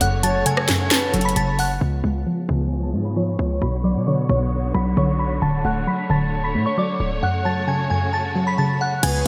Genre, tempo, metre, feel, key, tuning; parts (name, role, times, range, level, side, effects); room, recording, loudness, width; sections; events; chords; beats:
hip hop, trap; 133 BPM; 4/4; half-time; F# harmonic minor; A4 = 440 Hz
glassy synth bell; melody; 0.0-9.2 s; C#5 to B6; -27 LUFS; equal; chorus, low-pass filter, digital delay
soft round pluck; accompaniment; 0.0-9.3 s; F#2 to A3; -25 LUFS; equal; chorus, low-pass filter
dark symphonic string section; sustained chords; 0.0-9.3 s; C#3 to C#5; -31 LUFS; equal; low-pass filter
hard-hitting 808-style bass; bass; 0.0-9.2 s; D1 to B2; -26 LUFS; equal
trap drum kit; drums; 0.0-1.7, 9.0-9.1 s; crash cymbal, hi-hat, rim click, snare drum; -24 LUFS; equal; gated reverb
breathy flute-like synth lead; second line; 0.2-1.4, 9.0-9.3 s; A4 to C#5; -30 LUFS; equal; chorus, digital delay
moderate lush hall reverb, RT60 1.8 s; bright 1980s-style digital production; -21 LUFS; mono
0.0-1.8 A section; 1.8-9.0 B section
filter sweep 1.8-9.0
0.0 F#m; 1.8 C#7; 3.6 Bmadd9; 5.4 Dmaj7; 7.2 F#m
| 0.01 0.46 0.91 1.36 | 1.81 2.26 2.71 3.17 | 3.62 4.07 4.52 4.97 | 5.42 5.87 6.32 6.78 | 7.23 7.68 8.13 8.58 | 9.03